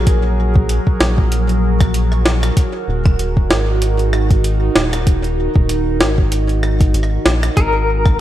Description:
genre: IDM.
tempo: 96 BPM.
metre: 4/4.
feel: swing 56% on 16ths.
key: unclear.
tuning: A4 = 439 Hz.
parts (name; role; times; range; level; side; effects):
warbly tape-like pad; sustained chords; 0.0-8.2 s; Eb3 to Bb4; -21 LUFS; right 1 dB; chorus, built-in reverb, phaser, vintage 12-bit sampler grit.
rubbery square bass; bass; 0.0-8.2 s; Eb1 to Bb1; -17 LUFS; equal; none.
electronic kick drum; drums; 0.1-8.2 s; none; -14 LUFS; equal; none.
jungle sampler-style drum kit; drums; 0.1-8.2 s; hi-hat, rim click, snare drum; -20 LUFS; equal; overdrive.
clean electric guitar; melody; 7.6-8.2 s; Bb4; -16 LUFS; left 4 dB; tremolo.
room: light reverb, digital ambience.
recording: dark, warm production.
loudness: -13 LUFS.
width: side -13 dB against mid.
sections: 0.0-8.2 A section.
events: none.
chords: 0.0 Gbadd9; 2.6 Ebm; 7.6 Ab5.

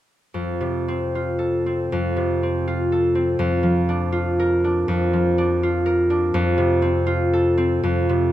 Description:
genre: classical, solo harp piece.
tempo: 80 BPM.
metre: 4/4.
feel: rubato.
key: F major.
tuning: A4 = 440 Hz.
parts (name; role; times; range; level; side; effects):
concert harp; solo; 0.3-8.3 s; F2 to Bb4; -18 LUFS; equal; none.
room: light reverb.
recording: close, detailed microphones.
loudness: -18 LUFS.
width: side -13 dB against mid.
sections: 0.3-8.3 A section.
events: none.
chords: 0.3 F; 3.4 Bb/F; 6.4 F.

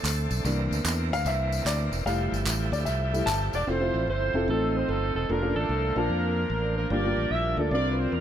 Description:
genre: uptempo gospel.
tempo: 149 BPM.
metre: 4/4.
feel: swing 66% on 8ths.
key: F major.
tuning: A4 = 441 Hz.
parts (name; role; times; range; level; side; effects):
bright tonewheel organ; sustained chords; 0.0-8.2 s; D3 to C5; -35 LUFS; right 2 dB; slow rotary speaker, overdrive.
fingered electric bass; bass; 0.0-8.2 s; E1 to F2; -28 LUFS; equal; none.
handclaps and tambourine; percussion; 0.1-3.6 s; none; -34 LUFS; equal; dub echo.
warm upright piano; accompaniment; 0.5-8.2 s; G2 to A5; -29 LUFS; left 1 dB; none.
breathy alto saxophone; melody; 3.5-8.2 s; A4 to E5; -31 LUFS; right 4 dB; dub echo.
warm horn section; melody; 3.5-8.2 s; A3 to E5; -32 LUFS; left 2 dB; dub echo.
mellow French horn section; sustained chords; 3.7-8.2 s; F3 to E4; -39 LUFS; right 3 dB; none.
room: light reverb, studio ambience.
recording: echo-heavy mix.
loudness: -24 LUFS.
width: side -10 dB against mid.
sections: 0.0-3.7 A section; 3.7-8.2 B section.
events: upright piano solo 0.0-3.7.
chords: 0.5 C9; 2.1 Fmaj9; 3.7 Fmaj7; 4.5 F7/A; 5.3 Bbmaj7/F; 6.9 Gm7.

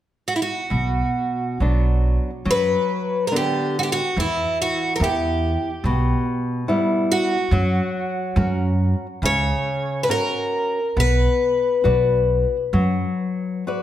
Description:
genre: fado-style ballad.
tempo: 70 BPM.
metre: 4/4.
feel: uneven beats, rubato.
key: B harmonic minor.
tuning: A4 = 440 Hz.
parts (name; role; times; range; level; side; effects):
picked twelve-string acoustic guitar; melody; 0.3-13.6 s; E4 to C#5; -22 LUFS; left 1 dB; none.
nylon-string guitar; accompaniment; 0.7-13.8 s; B2 to D5; -24 LUFS; left 1 dB; none.
upright bass; bass; 0.7-13.0 s; B1 to F#2; -21 LUFS; right 1 dB; none.
room: moderate recital hall reverb, RT60 1.4 s.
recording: none.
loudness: -18 LUFS.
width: side -12 dB against mid.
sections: 0.7-13.8 A section.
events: none.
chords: 0.0 N.C.; 0.7 Bm; 4.2 Em; 7.5 F#; 11.0 Bm.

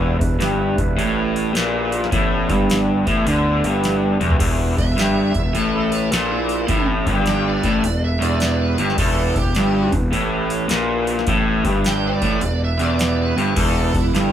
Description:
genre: blues rock power trio and southern rock.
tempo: 105 BPM.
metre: 4/4.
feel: swing 65% on 8ths.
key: E minor.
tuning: A4 = 440 Hz.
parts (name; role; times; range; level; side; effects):
percussive tonewheel organ; sustained chords; 0.0-14.3 s; G3 to E5; -32 LUFS; right 2 dB; none.
raw garage guitar; riff; 0.0-14.3 s; E2 to D3; -19 LUFS; equal; overdrive.
fuzz picked electric bass; bass; 0.0-14.3 s; E1 to D2; -22 LUFS; equal; overdrive.
booming analog drum machine; drums; 0.2-14.3 s; crash cymbal, hi-hat, kick drum, snare drum, toms; -23 LUFS; equal; none.
smooth overdriven lead guitar; second line; 4.8-14.3 s; E4 to G5; -26 LUFS; right 5 dB; none.
room: light reverb.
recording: band playing live in one room.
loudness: -16 LUFS.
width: side -10 dB against mid.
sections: 0.0-4.4 A section; 4.4-14.3 B section.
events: drum fill 4.1; lead electric guitar solo 4.4-14.3.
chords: 0.0 Em.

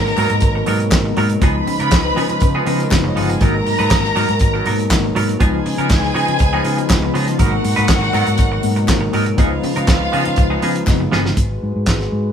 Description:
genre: disco.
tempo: 120 BPM.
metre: 4/4.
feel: straight.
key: G# dorian.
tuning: A4 = 440 Hz.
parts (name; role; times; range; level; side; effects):
rich studio violin section; second line; 0.0-11.1 s; A#3 to B5; -22 LUFS; equal; none.
mellow tine electric piano; accompaniment; 0.0-11.4 s; B2 to D#4; -22 LUFS; left 3 dB; medium stereo tremolo.
mellow French horn section; sustained chords; 0.0-12.3 s; B2 to B4; -25 LUFS; equal; none.
fingered electric bass; bass; 0.0-12.3 s; F#1 to C#3; -21 LUFS; equal; none.
semi-hollow electric guitar; accompaniment; 0.1-11.3 s; E#3 to B4; -23 LUFS; right 3 dB; tremolo.
warm soul drum kit; drums; 0.1-12.1 s; handclaps, hi-hat, kick drum, snare drum; -17 LUFS; equal; none.
group handclap; percussion; 0.2-11.0 s; none; -31 LUFS; left 2 dB; none.
room: moderate stone room reverb, RT60 1.0 s.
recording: band playing live in one room.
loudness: -14 LUFS.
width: side -8 dB against mid.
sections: 0.0-11.4 A section.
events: drum fill 10.9-11.4.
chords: 0.0 G#m9; 1.4 C#9; 3.4 G#m9; 5.4 C#9; 7.4 G#m9; 9.4 C#9; 11.4 G#m7.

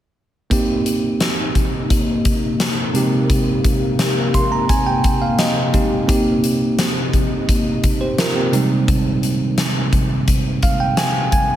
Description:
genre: 1980s-style pop.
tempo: 86 BPM.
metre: 4/4.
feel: straight.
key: unclear.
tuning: A4 = 440 Hz.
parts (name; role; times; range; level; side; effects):
bell-like tine electric piano; accompaniment; 0.5-11.6 s; C3 to C6; -19 LUFS; right 2 dB; none.
sweeping resonant pad; sustained chords; 0.5-11.6 s; C3 to G4; -24 LUFS; left 3 dB; wide subtle chorus.
huge arena drum kit; drums; 0.5-11.5 s; hi-hat, kick drum, snare drum; -19 LUFS; left 1 dB; gated reverb.
room: light reverb, small room ambience.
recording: none.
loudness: -15 LUFS.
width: side -12 dB against mid.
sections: 0.5-11.6 A section.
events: tine electric piano fill 4.0-6.1, 10.3-11.6.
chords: 0.5 Cm7; 3.0 Abmaj7/C; 6.1 Cm7; 8.5 Abmaj7/C.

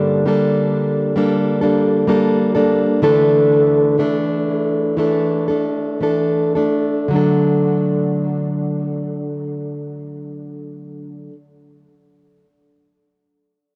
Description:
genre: pop.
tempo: 54-67 BPM.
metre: 4/4.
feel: straight.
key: D major.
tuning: A4 = 440 Hz.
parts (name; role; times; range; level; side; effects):
fingerpicked plugged-in steel-string acoustic guitar; solo; 0.0-11.4 s; G2 to A4; -18 LUFS; equal; tape echo.
room: light reverb.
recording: home recording on cassette.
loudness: -17 LUFS.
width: mono.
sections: 0.0-7.1 A section; 7.1-11.5 B section.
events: slowing down 0.0-7.1.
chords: 0.0 Gmadd9; 3.0 Dsus2; 7.1 D.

